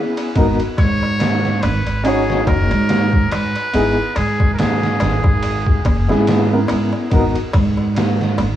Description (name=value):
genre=trip hop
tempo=71 BPM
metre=4/4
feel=swing 56% on 16ths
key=G# minor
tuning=A4 = 440 Hz
part: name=warm upright piano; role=accompaniment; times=0.0-7.3 s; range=B3 to C#5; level=-20 LUFS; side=left 1 dB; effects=tremolo, tape echo
part: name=trip hop sampler-style drum kit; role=drums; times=0.2-8.6 s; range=kick drum, ride cymbal, snare drum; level=-19 LUFS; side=equal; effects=none
part: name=darbuka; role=percussion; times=0.2-8.6 s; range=none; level=-29 LUFS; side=left 1 dB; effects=none
part: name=upright bass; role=bass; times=0.4-8.6 s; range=F#1 to G#2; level=-18 LUFS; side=right 1 dB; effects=none
part: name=trumpet with metal mute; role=melody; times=0.8-6.3 s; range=G#4 to C#5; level=-24 LUFS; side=equal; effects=dub echo
room=light reverb, small room reverb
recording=vinyl crackle, small room ambience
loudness=-14 LUFS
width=side -12 dB against mid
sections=0.0-8.6 A section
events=break 0.0-0.4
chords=0.4 G#m; 2.1 D#m7; 3.7 G#m; 5.4 F#7sus4; 7.1 G#m7